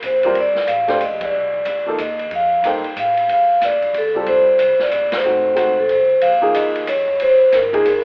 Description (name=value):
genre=modal jazz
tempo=184 BPM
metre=3/4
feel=swing 63% on 8ths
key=unclear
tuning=A4 = 439 Hz
part: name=upright bass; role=bass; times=0.0-8.0 s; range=G1 to A2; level=-41 LUFS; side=equal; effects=none
part: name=open jazz drum kit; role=drums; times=0.0-8.0 s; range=hi-hat, kick drum, ride cymbal, snare drum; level=-26 LUFS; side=equal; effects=none
part: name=vibraphone with medium mallets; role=melody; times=0.1-8.0 s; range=Ab4 to G5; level=-14 LUFS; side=equal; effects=none
part: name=warm grand piano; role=accompaniment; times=0.2-7.8 s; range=F3 to C5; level=-21 LUFS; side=equal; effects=none
room=moderate large studio reverb, RT60 0.9 s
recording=heard from further back in the room, telephone sound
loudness=-14 LUFS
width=side -39 dB against mid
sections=0.0-6.2 A section; 6.2-8.0 B section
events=band accent 1.2, 5.1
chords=0.0 Cm9; 2.3 Dm; 5.2 Adim7; 6.2 Bb7sus4